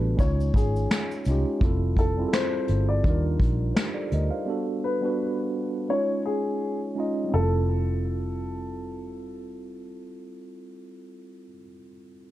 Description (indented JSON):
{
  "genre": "lo-fi hip hop",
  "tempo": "84 BPM",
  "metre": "4/4",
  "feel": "swing 55% on 16ths",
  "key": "unclear",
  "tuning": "A4 = 442 Hz",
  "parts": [
    { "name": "mellow tine electric piano", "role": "accompaniment", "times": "0.0-12.3 s", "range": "G3 to F5", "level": "-29 LUFS", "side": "right 1 dB", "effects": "medium stereo tremolo, cassette tape, low-pass filter, plate reverb" },
    { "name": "vintage muted fingered electric bass", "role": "bass", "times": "0.0-11.6 s", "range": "F1 to Eb2", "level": "-25 LUFS", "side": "equal", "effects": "none" },
    { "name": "dark upright piano", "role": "melody", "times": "0.2-9.4 s", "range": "Ab4 to D5", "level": "-30 LUFS", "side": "left 3 dB", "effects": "low-pass filter, analog delay, plate reverb" },
    { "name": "vintage brush drum kit", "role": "drums", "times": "0.2-4.3 s", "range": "finger snaps, hi-hat, kick drum, shaker, snare drum", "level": "-24 LUFS", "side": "equal", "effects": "none" }
  ],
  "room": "light reverb",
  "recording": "dark, warm production",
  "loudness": "-23 LUFS",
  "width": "side -14 dB against mid",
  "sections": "0.0-7.3 A section; 7.3-10.2 B section",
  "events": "break 4.5-7.3",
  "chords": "0.2 Dbadd9; 1.6 Fmaj9; 3.0 Ebmaj9; 4.5 Gmaj9; 5.9 Dbadd9; 7.3 Fmaj9"
}